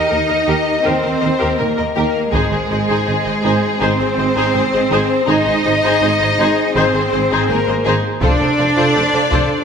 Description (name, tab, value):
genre	cinematic, epic orchestral film score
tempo	81 BPM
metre	4/4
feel	straight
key	unclear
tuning	A4 = 440 Hz
part	rich symphonic violin section	melody	0.0-9.6 s	Ab4 to Eb5	-20 LUFS	left 4 dB	none
part	warm symphonic violin section	second line	0.0-9.5 s	Eb4 to F5	-23 LUFS	left 4 dB	none
part	warm symphonic viola section	accompaniment	0.0-9.5 s	Ab4 to C5	-22 LUFS	equal	none
part	mellow French horn section	sustained chords	0.0-9.6 s	Ab4 to Eb5	-25 LUFS	left 4 dB	none
part	rich symphonic cello section	bass	0.0-9.6 s	Ab3 to Eb4	-19 LUFS	right 3 dB	none
part	mellow tuba	bass	0.1-9.4 s	F1 to Eb2	-25 LUFS	right 4 dB	none
part	warm studio double bass section	bass	0.1-9.4 s	F1 to Eb2	-23 LUFS	right 3 dB	none
part	taiko ensemble	drums	2.3-3.8, 8.2-9.6 s	none	-21 LUFS	equal	none
room	moderate concert hall reverb, RT60 2.2 s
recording	none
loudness	-13 LUFS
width	side -6 dB against mid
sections	0.0-9.6 A section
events	none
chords	0.0 Eb; 2.3 Ab; 8.2 F